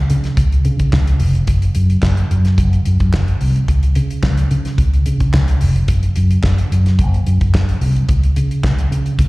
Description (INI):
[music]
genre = disco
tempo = 109 BPM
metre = 4/4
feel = straight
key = unclear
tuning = A4 = 441 Hz
[part]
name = fingered electric bass with an envelope filter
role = bass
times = 0.0-9.3 s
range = E#1 to C#3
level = -14 LUFS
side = equal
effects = none
[part]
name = damped 70s drum kit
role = drums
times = 0.1-9.3 s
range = handclaps, hi-hat, kick drum, snare drum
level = -18 LUFS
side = equal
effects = none
[sound]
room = little or no reverb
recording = live gig heard through the venue's PA, recital hall reverb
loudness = -13 LUFS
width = side -22 dB against mid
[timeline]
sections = 0.0-9.3 A section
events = none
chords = none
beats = 0.37 0.93 | 1.48 2.03 2.58 3.13 | 3.68 4.23 4.79 5.33 | 5.89 6.44 6.99 7.54 | 8.09 8.64 9.19